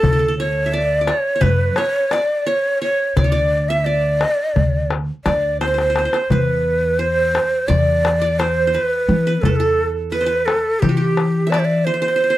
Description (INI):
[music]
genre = Turkish makam ensemble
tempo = 172 BPM (eighths)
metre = 9/8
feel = straight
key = D makam rast, E makam ussak from 6.3 s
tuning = A4 = 441 Hz
[part]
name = breathy bright ney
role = melody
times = 0.0-12.4 s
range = G4 to E5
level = -18 LUFS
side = equal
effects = slapback echo
[part]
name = qanun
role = second line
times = 0.0-12.4 s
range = F#4-30c to E5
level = -25 LUFS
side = right 4 dB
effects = none
[part]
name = upright bass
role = bass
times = 0.0-11.9 s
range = D2 to E3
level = -20 LUFS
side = equal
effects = none
[part]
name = darbuka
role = percussion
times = 0.0-11.7 s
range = none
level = -20 LUFS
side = left 4 dB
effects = none
[sound]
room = light reverb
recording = dry, close 1970s-style studio recording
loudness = -15 LUFS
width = side -14 dB against mid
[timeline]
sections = 0.0-6.3 A section; 6.3-12.4 B section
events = drum fill 5.6-6.3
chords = none